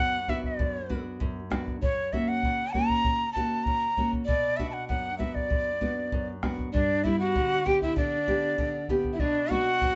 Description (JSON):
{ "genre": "andean folk, Andean ensemble", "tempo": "98 BPM", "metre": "2/4", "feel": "straight", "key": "B minor", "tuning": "A4 = 440 Hz", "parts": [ { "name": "breathy quena", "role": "melody", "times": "0.0-10.0 s", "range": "C#5 to A#5", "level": "-30 LUFS", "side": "equal", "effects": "none" }, { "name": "nylon-string guitar", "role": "accompaniment", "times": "0.0-10.0 s", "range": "F#2 to G4", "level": "-33 LUFS", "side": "equal", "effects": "none" }, { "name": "bombo", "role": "percussion", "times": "0.3-10.0 s", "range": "none", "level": "-34 LUFS", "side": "equal", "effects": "none" }, { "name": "breathy bright pan flute", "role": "second line", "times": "6.7-10.0 s", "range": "D4 to G4", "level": "-31 LUFS", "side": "equal", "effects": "none" } ], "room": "wet small room reverb, RT60 0.5 s", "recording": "nothing above 7.7 kHz", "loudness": "-28 LUFS", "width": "mono", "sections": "0.0-6.7 A section; 6.7-10.0 A section", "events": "none", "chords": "0.0 Bm; 1.8 F#; 4.3 Bm; 6.7 G; 9.2 Bm" }